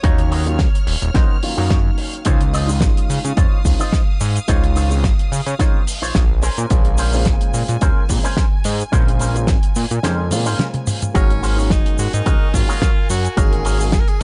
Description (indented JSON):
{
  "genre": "nu-disco, nu disco",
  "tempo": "108 BPM",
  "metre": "4/4",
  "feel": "swing 54% on 16ths",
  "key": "unclear",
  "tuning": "A4 = 440 Hz",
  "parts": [
    { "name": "dark concert grand piano", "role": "accompaniment", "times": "0.0-13.9 s", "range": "Db3 to F5", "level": "-29 LUFS", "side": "equal", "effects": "vintage 12-bit sampler grit, sidechain pumping, tape echo" },
    { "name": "rich studio string section", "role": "sustained chords", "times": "0.0-14.2 s", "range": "Bb4 to F6", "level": "-36 LUFS", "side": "equal", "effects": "sidechain pumping" },
    { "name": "electric guitar with an envelope filter", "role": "riff", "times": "0.0-14.0 s", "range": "Db4 to Eb5", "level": "-29 LUFS", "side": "equal", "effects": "lush chorus, tape echo" },
    { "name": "fat analog bass", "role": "bass", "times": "0.0-14.2 s", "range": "Eb1 to Db3", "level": "-21 LUFS", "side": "equal", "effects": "none" },
    { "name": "damped 70s drum kit", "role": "drums", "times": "0.0-14.2 s", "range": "hi-hat, shaker, snare drum, toms", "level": "-26 LUFS", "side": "equal", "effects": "none" },
    { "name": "electronic kick drum", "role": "drums", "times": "0.0-14.0 s", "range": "none", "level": "-19 LUFS", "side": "equal", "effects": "overdrive" },
    { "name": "edgy tenor saxophone", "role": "melody", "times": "11.2-14.2 s", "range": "Db4 to Bb4", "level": "-29 LUFS", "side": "equal", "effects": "tape echo" }
  ],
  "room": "small room ambience",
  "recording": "nothing above 10.6 kHz",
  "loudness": "-17 LUFS",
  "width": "mono",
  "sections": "0.0-14.2 A section",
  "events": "break 10.0-11.2; drum fill 10.3-11.2",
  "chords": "0.0 Ebm7; 2.3 Dbmaj9; 11.2 Ab9sus4"
}